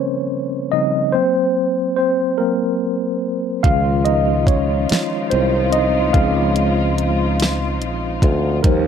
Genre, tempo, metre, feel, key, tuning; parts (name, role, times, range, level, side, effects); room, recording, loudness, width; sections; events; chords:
slow six-eight R&B; 48 BPM (dotted quarters); 6/8; straight; Db major; A4 = 439 Hz
mellow tine electric piano; accompaniment; 0.0-8.9 s; Db3 to F5; -18 LUFS; equal; medium stereo tremolo
warm studio string section; sustained chords; 3.6-8.9 s; Eb3 to F4; -26 LUFS; left 2 dB
sustaining fretless electric bass; bass; 3.6-8.9 s; Bb1 to Eb2; -19 LUFS; equal; lush chorus
smooth R&B drum kit; drums; 3.6-8.8 s; hi-hat, kick drum, snare drum; -16 LUFS; equal
light reverb; -16 LUFS; side -7 dB against mid
0.0-8.9 A section
tine electric piano solo 0.0-8.9
0.0 Eb13; 1.1 Bbsus2; 3.6 Dbmaj9